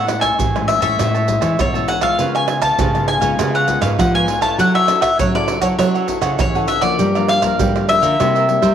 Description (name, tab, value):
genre	samba and choro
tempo	100 BPM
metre	4/4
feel	straight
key	A major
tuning	A4 = 439 Hz
part	bowl-back mandolin	melody	0.0-8.7 s	C#5 to A5	-17 LUFS	left 2 dB	none
part	cavaquinho	accompaniment	0.0-8.7 s	E4 to A5	-25 LUFS	right 8 dB	none
part	nylon-string guitar	accompaniment	0.0-8.7 s	G2 to A4	-23 LUFS	left 11 dB	none
part	nylon-string guitar	bass	0.0-8.7 s	G#2 to G3	-20 LUFS	right 1 dB	none
part	maracas, pandeiro, tamborim and surdo	percussion	0.1-8.7 s	none	-21 LUFS	right 5 dB	none
room	moderate plate reverb, RT60 2.8 s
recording	1960s-style stereo with parts hard left and right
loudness	-14 LUFS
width	side -9 dB against mid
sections	0.0-8.7 A section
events	none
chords	0.0 Amaj7; 2.2 C#7; 4.6 F#m7; 7.0 Gm7; 8.2 C7